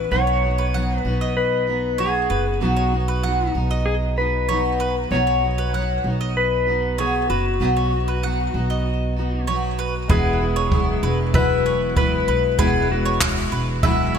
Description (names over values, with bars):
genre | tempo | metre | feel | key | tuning
acoustic pop | 96 BPM | 4/4 | straight | E major | A4 = 440 Hz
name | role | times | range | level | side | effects
clean lap steel guitar | melody | 0.0-14.1 s | F#4 to C#5 | -24 LUFS | left 3 dB | wide subtle chorus
picked steel-string acoustic guitar | accompaniment | 0.0-14.2 s | E2 to F#4 | -24 LUFS | equal | double-tracked left and right
upright bass | bass | 0.0-14.2 s | E1 to B1 | -23 LUFS | equal | none
mandolin | arpeggios | 0.3-14.2 s | B4 to F#5 | -28 LUFS | right 6 dB | digital delay
clear upright piano | accompaniment | 10.1-14.2 s | G#3 to G#5 | -32 LUFS | left 2 dB | analog chorus
jazz brush drum kit | drums | 10.1-14.0 s | handclaps, kick drum | -21 LUFS | equal | gated reverb
room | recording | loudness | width
light reverb, small room ambience | bright 1980s-style digital production | -18 LUFS | side -7 dB against mid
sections
0.0-10.1 A section; 10.1-14.2 B section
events
upright piano fill 13.8-14.2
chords
0.1 B; 10.1 Eadd9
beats
| 0.12 0.74 1.37 1.99 | 2.62 3.24 3.87 4.49 | 5.11 5.74 6.36 6.99 | 7.61 8.23 8.86 9.48 | 10.10 10.72 11.35 11.97 | 12.59 13.21 13.83